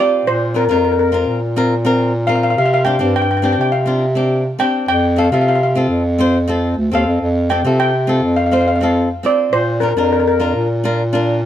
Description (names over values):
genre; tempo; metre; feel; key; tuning
calypso; 103 BPM; 4/4; straight; Bb major; A4 = 437 Hz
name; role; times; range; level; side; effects
steel pan; melody; 0.0-10.3 s; Bb4 to G5; -18 LUFS; left 1 dB; none
flamenco guitar; accompaniment; 0.0-11.4 s; C4 to C5; -19 LUFS; left 1 dB; none
mellow bass clarinet; bass; 0.2-11.5 s; D2 to C3; -16 LUFS; right 1 dB; none
room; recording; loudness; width
light reverb; none; -13 LUFS; side -11 dB against mid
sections
0.0-11.5 A section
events
none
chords
0.3 Bbsus2; 2.6 Csus2; 4.9 F; 9.5 Bb